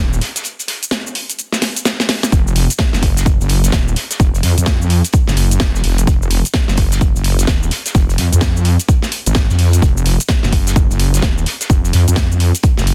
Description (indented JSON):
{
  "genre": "bass house",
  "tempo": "128 BPM",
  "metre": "4/4",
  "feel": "swing 62% on 16ths",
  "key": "unclear",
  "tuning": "A4 = 440 Hz",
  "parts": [
    { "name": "wobble bass", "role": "bass", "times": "0.0-12.9 s", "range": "Eb1 to F2", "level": "-16 LUFS", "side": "equal", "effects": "chorus, overdrive, sidechain pumping" },
    { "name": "house drum kit", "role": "drums", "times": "0.1-12.9 s", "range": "cabasa, hi-hat, snare drum", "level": "-22 LUFS", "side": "equal", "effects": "none" },
    { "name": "loose indie drum kit", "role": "drums", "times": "0.2-12.9 s", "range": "hi-hat, snare drum", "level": "-32 LUFS", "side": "equal", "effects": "none" },
    { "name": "electronic kick drum", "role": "drums", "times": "2.3-12.8 s", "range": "none", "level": "-16 LUFS", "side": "equal", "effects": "none" }
  ],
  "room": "little or no reverb",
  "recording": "dense, heavily limited modern master",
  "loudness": "-15 LUFS",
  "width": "mono",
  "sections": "0.0-12.9 A section",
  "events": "drum fill 1.6-2.3",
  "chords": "none"
}